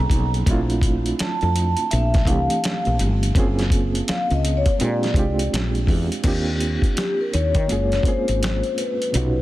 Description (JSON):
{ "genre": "R&B, neo-soul", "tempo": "83 BPM", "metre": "4/4", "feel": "swing 62% on 16ths", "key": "Eb major from 6.2 s", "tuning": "A4 = 444 Hz", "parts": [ { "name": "vibraphone with soft mallets", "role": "melody", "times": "0.0-9.4 s", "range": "G4 to A#5", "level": "-26 LUFS", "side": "left 2 dB", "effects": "slapback echo" }, { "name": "bright reed electric piano", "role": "accompaniment", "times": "0.0-9.4 s", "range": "A#2 to Ab4", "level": "-25 LUFS", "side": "right 3 dB", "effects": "fast tremolo" }, { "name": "woody fretless electric bass", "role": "bass", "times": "0.0-9.4 s", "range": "Gb1 to Eb3", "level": "-22 LUFS", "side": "equal", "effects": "none" }, { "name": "boom bap sampler-style drum kit", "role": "drums", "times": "0.1-9.3 s", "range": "crash cymbal, hi-hat, kick drum, snare drum", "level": "-23 LUFS", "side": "equal", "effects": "none" } ], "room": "little or no reverb", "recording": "dense, heavily limited modern master", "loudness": "-18 LUFS", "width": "side -16 dB against mid", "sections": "0.0-6.2 A section; 6.2-9.4 B section", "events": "vibraphone solo 6.2-9.4", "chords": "0.5 Bbmaj9; 3.4 Gbmaj9; 4.8 Bb9; 6.2 Ebmaj9; 7.7 Gbmaj9" }